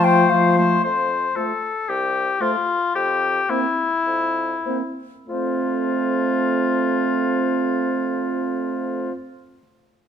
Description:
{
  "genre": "quick classical-period movement for wind quintet",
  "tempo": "95-116 BPM",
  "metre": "4/4",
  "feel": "straight",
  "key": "F major",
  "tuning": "A4 = 440 Hz",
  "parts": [
    { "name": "concert flute", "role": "melody", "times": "0.0-9.1 s", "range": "C5 to G5", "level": "-25 LUFS", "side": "left 10 dB", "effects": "none" },
    { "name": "warm oboe", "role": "second line", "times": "0.0-9.1 s", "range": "E4 to C5", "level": "-22 LUFS", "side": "left 4 dB", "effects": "none" },
    { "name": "warm French horn", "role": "accompaniment", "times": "0.0-9.1 s", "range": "F3 to Bb3", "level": "-25 LUFS", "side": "equal", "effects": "none" },
    { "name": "warm clarinet", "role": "accompaniment", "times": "0.0-9.1 s", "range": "A3 to F4", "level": "-24 LUFS", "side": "right 8 dB", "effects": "none" },
    { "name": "warm bassoon", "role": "bass", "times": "0.0-9.1 s", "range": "C2 to F4", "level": "-31 LUFS", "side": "right 3 dB", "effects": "none" }
  ],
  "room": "wet recital hall reverb, RT60 1.5 s",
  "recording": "none",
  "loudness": "-19 LUFS",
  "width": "side -8 dB against mid",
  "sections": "0.8-5.3 A section; 5.3-10.1 B section",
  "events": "slowing down 0.0-5.3",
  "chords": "0.0 F; 2.9 C7/F; 5.3 F",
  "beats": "0.31 | 0.83 1.35 1.88 2.40 | 2.94 3.49 4.06 4.66 | 5.28 5.90 6.51 7.13 | 7.75 8.37 8.98"
}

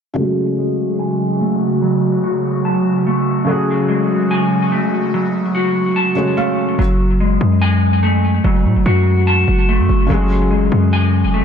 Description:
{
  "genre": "hip hop",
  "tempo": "145 BPM",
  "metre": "4/4",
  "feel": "half-time",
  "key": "F# minor",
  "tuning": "A4 = 439 Hz",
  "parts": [
    { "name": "felt-muted upright piano", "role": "accompaniment", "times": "0.1-6.8, 10.1-11.4 s", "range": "C#3 to E#5", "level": "-21 LUFS", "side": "left 2 dB", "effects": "analog chorus, low-pass filter" },
    { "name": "airy breathy pad", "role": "sustained chords", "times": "0.2-6.8 s", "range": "C#3 to F#4", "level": "-20 LUFS", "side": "right 2 dB", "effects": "chorus, low-pass filter" },
    { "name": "mellow electric guitar", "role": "arpeggios", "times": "0.2-11.4 s", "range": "F#3 to A5", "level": "-17 LUFS", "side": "equal", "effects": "wide subtle chorus, low-pass filter, ping-pong delay" },
    { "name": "hard-hitting 808-style bass", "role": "bass", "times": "6.8-11.4 s", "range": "E#1 to A2", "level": "-15 LUFS", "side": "equal", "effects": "none" }
  ],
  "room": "light reverb",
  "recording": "none",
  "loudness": "-13 LUFS",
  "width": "side -7 dB against mid",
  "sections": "0.2-6.8 A section; 6.8-11.4 B section",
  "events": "filter sweep 0.2-6.8; felt piano fill 6.0-6.8",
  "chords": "0.2 F#madd9",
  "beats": "| 0.17 0.58 1.00 1.41 | 1.82 2.24 2.65 3.06 | 3.48 3.89 4.31 4.72 | 5.13 5.55 5.96 6.38 | 6.79 7.20 7.62 8.03 | 8.44 8.86 9.27 9.69 | 10.10 10.51 10.93 11.34"
}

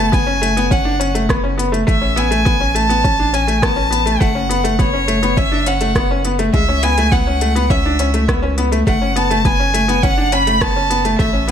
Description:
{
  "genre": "piano and strings electronica",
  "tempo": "103 BPM",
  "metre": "4/4",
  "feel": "straight",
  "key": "F# minor",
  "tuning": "A4 = 440 Hz",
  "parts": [
    { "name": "rich violin", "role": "melody", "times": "0.0-11.5 s", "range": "C#5 to B5", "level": "-18 LUFS", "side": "equal", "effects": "none" },
    { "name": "bright grand piano", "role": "riff", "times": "0.0-11.5 s", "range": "G#3 to D4", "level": "-18 LUFS", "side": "left 2 dB", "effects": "digital delay" },
    { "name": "round analog bass", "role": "bass", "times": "0.0-11.5 s", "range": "F#1 to C#2", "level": "-20 LUFS", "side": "right 1 dB", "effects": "sidechain pumping" },
    { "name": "electronic kick drum", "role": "drums", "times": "0.1-11.3 s", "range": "none", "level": "-18 LUFS", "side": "right 1 dB", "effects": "overdrive" },
    { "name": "organic electronic drum kit", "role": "drums", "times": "0.1-11.5 s", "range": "hi-hat, rim click", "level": "-25 LUFS", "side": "equal", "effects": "none" }
  ],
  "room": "light reverb",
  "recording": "none",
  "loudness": "-13 LUFS",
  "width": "side -8 dB against mid",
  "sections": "0.0-11.5 A section",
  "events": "none",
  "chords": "0.0 F#madd9; 1.9 A; 4.2 F#m; 6.5 C#m; 8.9 F#madd9",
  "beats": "0.13 0.71 1.30 | 1.88 2.46 3.04 3.63 | 4.21 4.79 5.37 5.96 | 6.54 7.12 7.70 8.29 | 8.87 9.45 10.03 10.62 | 11.20"
}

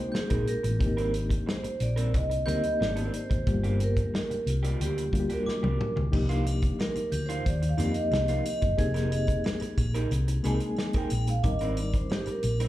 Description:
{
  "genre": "lush 1970s-style soul",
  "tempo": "90 BPM",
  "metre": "4/4",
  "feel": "straight",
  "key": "C minor",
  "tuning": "A4 = 440 Hz",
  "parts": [
    { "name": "vibraphone with soft mallets", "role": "melody", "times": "0.0-12.6 s", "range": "F4 to Ab5", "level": "-32 LUFS", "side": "right 2 dB", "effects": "none" },
    { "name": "reed electric piano", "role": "accompaniment", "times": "0.0-12.7 s", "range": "F3 to G5", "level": "-33 LUFS", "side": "left 3 dB", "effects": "fast tremolo" },
    { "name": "electric guitar through a small old amp", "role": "riff", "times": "0.1-12.7 s", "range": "Eb3 to Bb4", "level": "-38 LUFS", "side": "right 5 dB", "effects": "slapback echo" },
    { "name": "hollow-body short-scale fingered electric bass", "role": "bass", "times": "0.1-12.7 s", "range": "F1 to F2", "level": "-28 LUFS", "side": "equal", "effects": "none" },
    { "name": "warm soul drum kit", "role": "drums", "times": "0.1-12.7 s", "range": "hi-hat, kick drum, snare drum, splash cymbal, toms", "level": "-30 LUFS", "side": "equal", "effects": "none" },
    { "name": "glockenspiel with brass mallets", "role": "texture", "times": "0.1-12.7 s", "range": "D6 to Ab6", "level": "-46 LUFS", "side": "right 2 dB", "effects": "none" },
    { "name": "triangle", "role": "percussion", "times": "6.1-12.7 s", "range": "none", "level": "-46 LUFS", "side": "left 4 dB", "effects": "none" }
  ],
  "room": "studio reverb",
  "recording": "live gig heard through the venue's PA, club reverb",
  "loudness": "-25 LUFS",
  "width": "side -14 dB against mid",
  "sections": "0.0-12.7 A section",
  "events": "vibraphone solo 0.0-12.7; drum fill 5.5-6.1",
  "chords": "0.0 Fm11 (rootless); 0.8 Abmaj9#11; 3.5 Gm7; 6.1 Cm11; 8.8 Fm11; 11.4 Abmaj9#11",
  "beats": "0.14 | 0.81 1.47 2.14 2.80 | 3.47 4.13 4.80 5.46 | 6.13 6.79 7.46 8.12 | 8.79 9.45 10.11 10.78 | 11.44 12.10"
}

